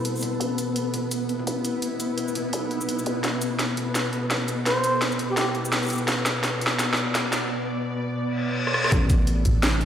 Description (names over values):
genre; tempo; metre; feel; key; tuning
half-time drum and bass; 169 BPM; 4/4; swing 58% on 16ths, half-time; A minor; A4 = 438 Hz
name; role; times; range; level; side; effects
bowed-like drone; sustained chords; 0.0-9.8 s; B2 to D5; -28 LUFS; equal; built-in reverb, vintage 12-bit sampler grit, sidechain pumping
growling 808-style bass; bass; 0.0-9.8 s; G1 to C2; -30 LUFS; equal; high-pass filter
drum and bass drum kit; drums; 0.0-9.8 s; hi-hat, rim click, shaker, snare drum, toms; -26 LUFS; equal; overdrive, high-pass filter on hats, high-pass filter on snare, high-pass filter on toms, high-pass filter on perc, high-pass filter on room
flickering grainy texture; texture; 0.0-7.5 s; B3 to B4; -33 LUFS; equal; built-in reverb
breathy mellow silver concert flute; melody; 4.7-5.4 s; G4 to C5; -27 LUFS; equal; digital delay
reverse cymbal; sound effects; 8.3-8.9 s; none; -27 LUFS; left 3 dB; none
electronic kick drum; drums; 8.9-9.5 s; none; -21 LUFS; equal; overdrive
room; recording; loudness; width
wet lush hall reverb, RT60 1.8 s; played on a big sound system in a bare room, stone room reverb; -22 LUFS; side -9 dB against mid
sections
0.0-8.9 A section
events
build-up 0.0-8.9; drum fill 3.2-7.5, 8.7; reverse cymbal 8.3-8.9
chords
0.0 Amadd9